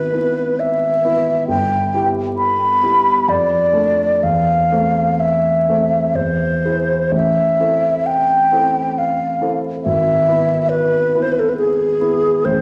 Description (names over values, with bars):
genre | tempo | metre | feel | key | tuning
classical, romantic duo for flute and grand piano | 61-70 BPM | 3/4 | rubato | unclear | A4 = 440 Hz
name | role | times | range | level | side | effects
mellow hollow concert flute | melody | 0.0-12.6 s | G#4 to B5 | -18 LUFS | equal | none
warm concert grand piano | accompaniment | 0.0-12.6 s | G1 to B4 | -22 LUFS | equal | none
room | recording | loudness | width
wet recital hall reverb, RT60 1.7 s | vinyl crackle | -16 LUFS | mono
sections
0.0-12.6 A section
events
none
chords
0.0 E/G#; 1.5 Em/G; 3.3 Dm/F; 4.2 Am/E; 6.2 E; 7.1 Am; 9.8 E/G#